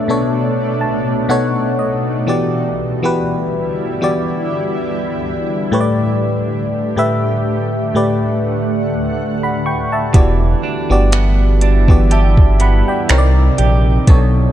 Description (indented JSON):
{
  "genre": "contemporary R&B",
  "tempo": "61 BPM",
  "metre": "4/4",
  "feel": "swing 54% on 16ths",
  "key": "E minor",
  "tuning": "A4 = 440 Hz",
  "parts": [
    { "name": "FM electric piano", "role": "accompaniment", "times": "0.0-14.5 s", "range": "A2 to C#6", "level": "-17 LUFS", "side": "left 2 dB", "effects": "chorus" },
    { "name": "granular cloud pad", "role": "sustained chords", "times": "0.0-14.5 s", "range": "B2 to F#5", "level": "-22 LUFS", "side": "right 2 dB", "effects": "built-in reverb, sidechain pumping" },
    { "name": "direct-recorded clean electric guitar", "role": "arpeggios", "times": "10.1-14.5 s", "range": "B2 to G4", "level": "-22 LUFS", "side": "right 8 dB", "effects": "lush chorus, tape echo" },
    { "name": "smooth synth bass", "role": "bass", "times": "10.1-14.5 s", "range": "E1 to C2", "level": "-12 LUFS", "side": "equal", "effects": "none" },
    { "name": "smooth R&B drum kit", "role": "drums", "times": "10.1-14.3 s", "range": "finger snaps, hi-hat, kick drum", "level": "-11 LUFS", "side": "equal", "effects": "none" }
  ],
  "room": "little or no reverb",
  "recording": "dark, warm production",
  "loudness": "-13 LUFS",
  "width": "side -11 dB against mid",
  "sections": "0.0-14.5 A section",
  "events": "FM electric piano fill 0.3-2.3",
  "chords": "0.0 Bm7; 1.3 B7; 2.3 Em7; 5.7 A7sus4; 10.1 Em7; 13.1 Cm7"
}